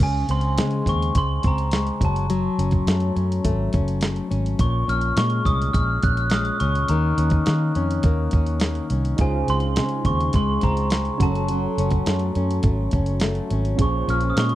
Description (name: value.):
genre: indie pop, bedroom pop.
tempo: 104 BPM.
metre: 4/4.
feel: straight.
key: Db major.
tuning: A4 = 440 Hz.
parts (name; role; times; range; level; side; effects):
glockenspiel with soft plastic mallets; melody; 0.0-14.6 s; Ab5 to Gb6; -27 LUFS; right 1 dB; analog chorus, slapback echo.
flamenco guitar; accompaniment; 0.0-14.6 s; Bb2 to Db4; -26 LUFS; left 4 dB; wide subtle chorus, vibrato effect.
vintage muted fingered electric bass; bass; 0.0-14.6 s; Gb1 to Eb3; -23 LUFS; right 1 dB; none.
dusty soul sampler-style drum kit; drums; 0.0-14.6 s; hi-hat, kick drum, snare drum; -23 LUFS; right 1 dB; none.
soft electric-piano-like synth keys; accompaniment; 9.2-14.6 s; Db4 to C5; -30 LUFS; right 7 dB; chorus, phaser, cassette tape.
room: little or no reverb.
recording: dry, close 1970s-style studio recording.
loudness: -19 LUFS.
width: side -14 dB against mid.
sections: 0.0-14.6 A section.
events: none.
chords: 0.0 Db5; 2.0 Gbmadd9; 4.6 Bbm7; 6.9 Eb5; 9.2 Dbmaj7; 11.2 Gbmadd9; 13.8 Bbm7.